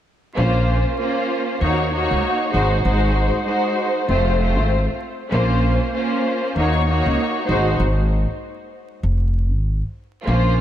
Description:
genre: hip hop, boom-bap hip-hop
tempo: 97 BPM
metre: 4/4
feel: swing 62% on 16ths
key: Bb minor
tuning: A4 = 440 Hz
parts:
  - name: clear studio string section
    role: accompaniment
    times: 0.3-10.6 s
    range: Ab3 to Db5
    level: -20 LUFS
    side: equal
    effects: high-pass filter, low-pass filter
  - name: upright bass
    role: bass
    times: 0.4-10.6 s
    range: F1 to Eb2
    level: -19 LUFS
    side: equal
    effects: none
room: moderate lush hall reverb, RT60 3.0 s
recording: dreamy mix soaked in reverb, vinyl crackle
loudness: -17 LUFS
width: side -11 dB against mid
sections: 0.4-10.6 A section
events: break 7.8-10.3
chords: 0.4 Bbmadd9; 1.6 Ebm7; 2.5 Ab7; 4.1 F; 5.3 Bbmadd9; 6.6 Ebm7; 7.5 Ab7; 9.0 Fm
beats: | 0.37 0.98 1.60 2.22 | 2.84 3.46 4.08 4.70 | 5.32 5.93 6.55 7.17 | 7.79 8.41 9.03 9.64 | 10.26

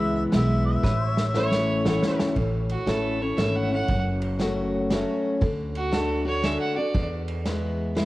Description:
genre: honky-tonk and classic country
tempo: 118 BPM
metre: 3/4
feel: swing 65% on 8ths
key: A major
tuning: A4 = 441 Hz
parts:
  - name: warm harmonica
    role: melody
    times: 0.0-1.8 s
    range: E5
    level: -31 LUFS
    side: left 1 dB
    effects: cassette tape, tape echo
  - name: dark concert grand piano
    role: accompaniment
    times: 0.0-8.1 s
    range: G#4 to B5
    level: -37 LUFS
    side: right 4 dB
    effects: none
  - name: picked steel-string acoustic guitar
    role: accompaniment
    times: 0.0-8.1 s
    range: E2 to F#4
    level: -26 LUFS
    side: left 2 dB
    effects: cassette tape
  - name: pedal steel guitar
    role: sustained chords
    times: 0.0-2.4 s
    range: B4 to E5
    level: -38 LUFS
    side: equal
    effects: none
  - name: upright bass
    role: bass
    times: 0.0-8.1 s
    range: F#1 to E2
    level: -28 LUFS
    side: right 1 dB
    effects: none
  - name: unplugged drum kit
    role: drums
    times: 0.3-8.1 s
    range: hi-hat, kick drum, ride cymbal, snare drum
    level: -29 LUFS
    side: equal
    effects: cassette tape
  - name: clear fiddle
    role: second line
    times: 1.4-7.0 s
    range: F#4 to F#5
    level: -30 LUFS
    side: right 3 dB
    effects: cassette tape
room: light reverb, small room ambience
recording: home recording on cassette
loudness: -22 LUFS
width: side -17 dB against mid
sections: 0.0-2.4 A section; 2.4-8.1 B section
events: drum fill 0.8-2.4; fiddle solo 2.4-8.1; grand piano fill 4.4-5.4, 7.7-8.1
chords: 0.0 E; 0.8 A; 3.9 F#m; 5.4 D; 6.9 E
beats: 0.33 | 0.83 1.34 1.85 | 2.36 2.87 3.38 | 3.89 4.40 4.91 | 5.42 5.93 6.44 | 6.95 7.46 7.97

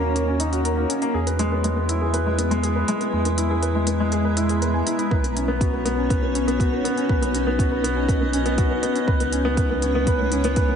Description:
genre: piano and strings electronica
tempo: 121 BPM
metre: 4/4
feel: straight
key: B major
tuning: A4 = 440 Hz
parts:
  - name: granular cloud pad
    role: sustained chords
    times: 0.0-10.8 s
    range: G#3 to A#5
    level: -27 LUFS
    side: equal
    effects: built-in reverb, sidechain pumping
  - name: warm baby grand piano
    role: riff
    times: 0.0-10.8 s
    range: G#3 to G#5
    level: -23 LUFS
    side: left 1 dB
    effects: tape echo
  - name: warm sub bass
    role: bass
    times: 0.0-10.8 s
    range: B1 to E2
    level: -26 LUFS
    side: right 1 dB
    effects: sidechain pumping
  - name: electronic hi-hat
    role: drums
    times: 0.2-10.7 s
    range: none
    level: -30 LUFS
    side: equal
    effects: none
  - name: electronic kick drum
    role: drums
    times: 5.1-10.7 s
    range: none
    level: -22 LUFS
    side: equal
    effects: none
room: moderate lush hall reverb, RT60 2.2 s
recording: nothing above 10.3 kHz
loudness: -19 LUFS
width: side -7 dB against mid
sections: 0.0-10.8 A section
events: build-up 0.0-10.8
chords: 0.0 D#m7; 1.1 E; 5.1 Badd9; 9.1 C#madd9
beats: 0.16 0.65 | 1.15 1.64 2.14 2.63 | 3.13 3.63 4.12 4.62 | 5.11 5.61 6.11 6.60 | 7.10 7.59 8.09 8.59 | 9.08 9.58 10.07 10.57

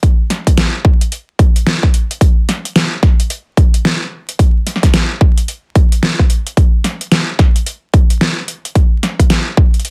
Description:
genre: glitch hop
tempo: 110 BPM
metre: 4/4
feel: swing 61% on 16ths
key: none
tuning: none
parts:
  - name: dubstep drum kit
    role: drums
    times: 0.0-9.9 s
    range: hi-hat, snare drum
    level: -18 LUFS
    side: equal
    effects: overdrive
  - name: electronic kick drum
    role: drums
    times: 0.0-9.7 s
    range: none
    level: -12 LUFS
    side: equal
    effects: overdrive
room: little or no reverb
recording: dense, heavily limited modern master, vinyl crackle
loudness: -13 LUFS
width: mono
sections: 0.0-9.9 A section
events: none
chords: none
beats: | 0.03 0.57 1.12 1.66 | 2.21 2.75 3.30 3.85 | 4.39 4.94 5.48 6.03 | 6.57 7.12 7.66 8.21 | 8.76 9.30 9.85

